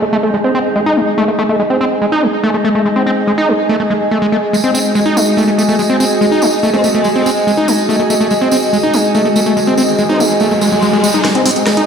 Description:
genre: psychedelic trance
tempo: 143 BPM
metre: 4/4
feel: straight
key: unclear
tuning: A4 = 440 Hz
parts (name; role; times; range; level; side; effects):
- evolving wavetable pad; sustained chords; 0.0-11.9 s; G#3 to F#4; -18 LUFS; equal; phaser, built-in reverb
- overdriven acid bass; riff; 0.0-11.9 s; G#3 to D#4; -14 LUFS; equal; distortion, auto-pan, digital delay
- downlifter and riser; sound effects; 0.0-1.2, 8.8-11.9 s; none; -23 LUFS; right 1 dB; none
- airy breathy pad; texture; 0.0-11.9 s; G#4 to G#5; -17 LUFS; equal; chorus
- tambourine; percussion; 4.5-11.9 s; none; -21 LUFS; right 3 dB; none
- formant-sweep wobble bass; second line; 6.7-7.4, 10.1-11.2 s; G#3 to B#3; -24 LUFS; left 3 dB; chorus, high-pass filter, ping-pong delay
- drum and bass drum kit; drums; 11.2-11.9 s; hi-hat, rim click, snare drum; -16 LUFS; equal; high-pass filter on hats, high-pass filter on snare
room: wet lush hall reverb, RT60 2.5 s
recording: played on a big sound system in a bare room, large studio reverb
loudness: -11 LUFS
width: side -7 dB against mid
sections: 0.0-11.2 A section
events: riser 8.8-11.2, 11.2-11.9; drum fill 11.2-11.9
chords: 0.0 G#5

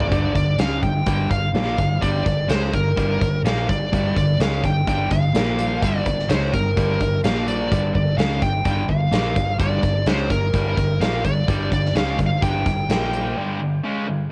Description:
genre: hard rock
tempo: 127 BPM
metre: 4/4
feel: straight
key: G minor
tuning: A4 = 440 Hz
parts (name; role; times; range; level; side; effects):
- smooth overdriven lead guitar; melody; 0.0-14.3 s; Bb4 to G5; -28 LUFS; equal; cassette tape
- overdriven electric guitar; riff; 0.0-14.3 s; G2 to C#4; -26 LUFS; equal; spring reverb, cassette tape
- fingered electric bass; bass; 0.0-13.3 s; G1 to C#2; -26 LUFS; equal; none
- huge arena drum kit; drums; 0.0-13.2 s; hi-hat, kick drum, snare drum, toms; -26 LUFS; equal; cassette tape
room: moderate booth ambience, RT60 0.2 s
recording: home recording on cassette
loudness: -21 LUFS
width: mono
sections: 0.1-14.3 A section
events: break 13.4-14.3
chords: 0.1 Gm; 5.3 Bb5; 5.8 Gm; 7.2 Bb5; 7.7 Gm; 12.9 Bb5; 13.4 G5

